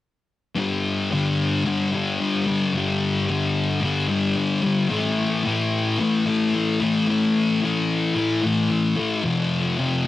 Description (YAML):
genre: rock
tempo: 111 BPM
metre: 4/4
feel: straight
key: unclear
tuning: A4 = 440 Hz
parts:
  - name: thick fuzz guitar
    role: solo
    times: 0.6-10.1 s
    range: F2 to A3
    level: -20 LUFS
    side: left 2 dB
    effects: distortion, lush chorus, cassette tape
room: light reverb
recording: home recording on cassette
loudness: -20 LUFS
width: side -14 dB against mid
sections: 0.6-10.1 A section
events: none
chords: 0.6 G5; 4.9 A5; 9.2 F5